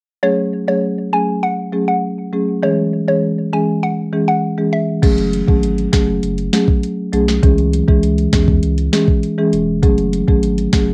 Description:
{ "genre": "dancehall", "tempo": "100 BPM", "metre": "4/4", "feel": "straight", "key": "F# minor", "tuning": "A4 = 438 Hz", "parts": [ { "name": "mallet-like synth pluck", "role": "melody", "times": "0.2-4.8 s", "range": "C#5 to G#5", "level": "-22 LUFS", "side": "equal", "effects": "chorus, phaser, cassette tape" }, { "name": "marimba with medium mallets", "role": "accompaniment", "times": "0.2-10.9 s", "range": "E3 to G#4", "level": "-18 LUFS", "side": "equal", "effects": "cassette tape" }, { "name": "warm sub bass", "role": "bass", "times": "5.0-10.9 s", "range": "E1 to E2", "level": "-23 LUFS", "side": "equal", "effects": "none" }, { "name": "afro-pop drum kit", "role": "drums", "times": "5.0-10.9 s", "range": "crash cymbal, hi-hat, kick drum, snare drum", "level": "-17 LUFS", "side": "equal", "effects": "cassette tape" } ], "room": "light reverb", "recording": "home recording on cassette", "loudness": "-16 LUFS", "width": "mono", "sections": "0.2-5.0 A section; 5.0-10.9 B section", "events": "none", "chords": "0.2 F#madd9; 2.6 C#m; 5.0 F#madd9; 7.4 C#m; 9.8 F#madd9" }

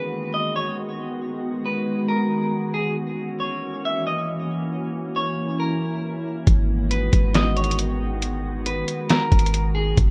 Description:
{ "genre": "hip hop, atmospheric cloud-rap", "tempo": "137 BPM", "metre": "4/4", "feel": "half-time", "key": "G# minor", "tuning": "A4 = 440 Hz", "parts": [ { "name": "clean electric guitar", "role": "melody", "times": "0.0-10.0 s", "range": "G#4 to E5", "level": "-30 LUFS", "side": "equal", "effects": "low-pass filter, digital delay" }, { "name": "glassy FM pad", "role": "sustained chords", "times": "0.0-10.1 s", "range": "D#3 to F#4", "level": "-28 LUFS", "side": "equal", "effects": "ensemble chorus, built-in reverb, sidechain pumping" }, { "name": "clean 808-style bass", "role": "bass", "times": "6.5-10.1 s", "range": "F#1 to G#1", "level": "-25 LUFS", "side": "equal", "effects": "none" }, { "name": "lo-fi sampler-style drum kit", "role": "drums", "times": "6.5-10.1 s", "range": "hi-hat, kick drum, snare drum", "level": "-21 LUFS", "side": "equal", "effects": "none" } ], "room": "little or no reverb", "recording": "rough home demo mix, lossy compression artefacts", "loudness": "-23 LUFS", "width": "mono", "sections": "0.0-10.1 A section", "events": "none", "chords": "0.0 G#m7; 3.0 F#7; 6.5 G#m7" }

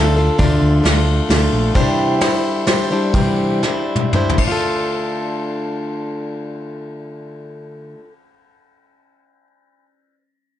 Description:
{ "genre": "folk rock and heartland rock", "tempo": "112-133 BPM", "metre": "3/4", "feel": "straight", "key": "D minor", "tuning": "A4 = 441 Hz", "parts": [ { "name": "picked plugged-in swing-style acoustic guitar", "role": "accompaniment", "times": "0.0-8.1 s", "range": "C3 to C5", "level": "-19 LUFS", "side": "left 1 dB", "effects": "none" }, { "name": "hollow-body short-scale picked electric bass", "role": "bass", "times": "0.0-1.7 s", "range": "Bb1 to D2", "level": "-16 LUFS", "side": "equal", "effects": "none" }, { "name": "soft brush drum kit", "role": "drums", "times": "0.4-4.5 s", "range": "kick drum, ride cymbal, snare drum, toms", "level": "-20 LUFS", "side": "equal", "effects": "none" } ], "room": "light reverb, small room ambience", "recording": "dark, warm production, nothing above 10.6 kHz", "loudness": "-15 LUFS", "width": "side -11 dB against mid", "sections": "0.0-4.6 A section; 4.6-7.9 B section", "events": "slowing down 1.8-4.6; drum fill 3.6-4.6", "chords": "0.0 Dm; 1.8 Cadd9; 4.4 Dm" }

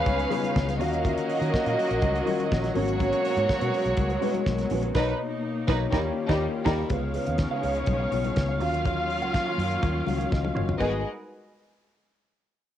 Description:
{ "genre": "disco", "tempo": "123 BPM", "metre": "4/4", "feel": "straight", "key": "G# dorian", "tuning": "A4 = 440 Hz", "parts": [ { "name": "warm chamber violin section", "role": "second line", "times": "0.0-11.0 s", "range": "G3 to E#5", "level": "-28 LUFS", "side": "right 1 dB", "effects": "cassette tape" }, { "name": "mellow tine electric piano", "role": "accompaniment", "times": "0.0-11.0 s", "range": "B2 to E#5", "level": "-32 LUFS", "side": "left 9 dB", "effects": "medium stereo tremolo, cassette tape" }, { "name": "clear studio string section", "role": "sustained chords", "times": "0.0-11.0 s", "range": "B2 to E#5", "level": "-33 LUFS", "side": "equal", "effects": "cassette tape" }, { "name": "vintage muted fingered electric bass", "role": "bass", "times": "0.0-11.0 s", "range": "F#1 to D#3", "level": "-30 LUFS", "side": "equal", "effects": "none" }, { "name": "damped 70s drum kit", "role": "drums", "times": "0.1-10.9 s", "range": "crash cymbal, hi-hat, kick drum, snare drum, toms", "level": "-29 LUFS", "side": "equal", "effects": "cassette tape" }, { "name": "congas", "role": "percussion", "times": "0.1-11.0 s", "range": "none", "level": "-37 LUFS", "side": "left 8 dB", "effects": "none" }, { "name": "mellow electric guitar", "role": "accompaniment", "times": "0.2-11.0 s", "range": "C#4 to F#5", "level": "-34 LUFS", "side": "right 9 dB", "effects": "phaser, cassette tape" } ], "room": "light reverb", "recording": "home recording on cassette", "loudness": "-23 LUFS", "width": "side -11 dB against mid", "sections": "0.0-6.9 A section; 6.9-10.8 B section; 10.8-12.8 C section", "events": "band accent 4.9-6.9; tine electric piano fill 9.8-10.8; drum fill 10.3-10.8", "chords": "0.0 C#7; 0.8 D#m9; 2.8 G#m11; 4.9 Bmaj9; 5.9 D#7; 6.9 C#7; 8.6 D#m9; 10.8 G#m7" }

